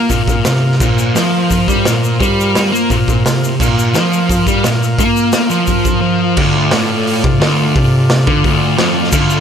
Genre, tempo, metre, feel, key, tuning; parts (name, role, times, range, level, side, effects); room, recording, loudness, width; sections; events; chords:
garage rock duo or trio; 173 BPM; 4/4; straight; D minor; A4 = 440 Hz
combo organ; sustained chords; 0.0-9.4 s; F4 to F5; -22 LUFS; left 2 dB
fuzz guitar; riff; 0.0-9.4 s; D2 to Bb3; -13 LUFS; equal; distortion
raw garage drum kit; drums; 0.1-9.2 s; crash cymbal, hi-hat, kick drum, snare drum; -16 LUFS; equal
egg shaker; percussion; 0.1-5.9, 9.1-9.4 s; -26 LUFS; left 8 dB
light reverb; -11 LUFS; side -8 dB against mid
0.0-6.4 A section; 6.4-9.4 B section
0.0 Bb5; 6.4 Dm